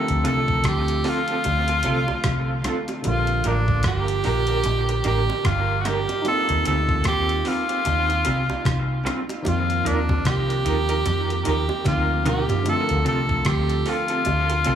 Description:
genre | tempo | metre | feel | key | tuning
lovers rock reggae | 75 BPM | 4/4 | swing 59% on 16ths | Bb major | A4 = 440 Hz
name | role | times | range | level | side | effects
bright tenor saxophone | melody | 0.0-14.8 s | D4 to A4 | -24 LUFS | right 1 dB | tape echo
barky tine electric piano | accompaniment | 0.0-14.8 s | D3 to F4 | -29 LUFS | left 3 dB | overdrive, analog chorus
vintage muted fingered electric bass | bass | 0.1-14.8 s | G1 to F2 | -24 LUFS | equal | none
crisp 8-bit digital drum machine | drums | 0.1-14.8 s | hi-hat, kick drum, rim click, snare drum, toms | -27 LUFS | equal | none
electric guitar through a small old amp | stabs | 0.2-14.8 s | G3 to Bb4 | -29 LUFS | right 4 dB | tremolo, dub echo
bongos | percussion | 1.4-14.8 s | none | -35 LUFS | right 3 dB | none
room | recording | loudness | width
light reverb | studio ambience | -19 LUFS | side -9 dB against mid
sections
0.0-14.8 A section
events
drum fill 11.9-12.7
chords
0.0 Dm7; 3.1 Bb6; 6.3 Eb69; 9.5 F7sus4; 12.7 Dm7

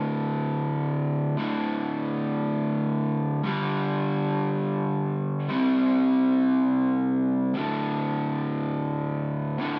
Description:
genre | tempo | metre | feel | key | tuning
rock | 58 BPM (dotted quarters) | 6/8 | straight | unclear | A4 = 439 Hz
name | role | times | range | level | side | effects
raw garage guitar | solo | 0.0-9.8 s | D2 to C4 | -26 LUFS | equal | overdrive
room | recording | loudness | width
wet stone room reverb, RT60 1.0 s | band playing live in one room | -26 LUFS | mono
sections
0.0-9.8 A section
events
none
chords
0.0 D5; 3.4 G5; 5.5 C5; 7.5 D5

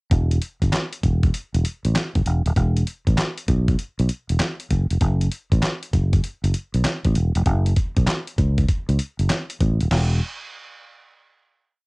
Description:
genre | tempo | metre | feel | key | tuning
R&B, new jack swing | 98 BPM | 4/4 | swing 65% on 16ths | E dorian | A4 = 439 Hz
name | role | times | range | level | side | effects
fingered electric bass | bass | 0.1-10.2 s | D#1 to C#2 | -19 LUFS | equal | tube saturation
dusty soul sampler-style drum kit | drums | 0.1-10.1 s | crash cymbal, handclaps, hi-hat, kick drum, snare drum | -22 LUFS | equal | cassette tape
room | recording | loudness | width
little or no reverb | home recording on cassette | -19 LUFS | side -34 dB against mid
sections
0.1-9.9 verse; 9.9-11.9 final chord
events
none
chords
none

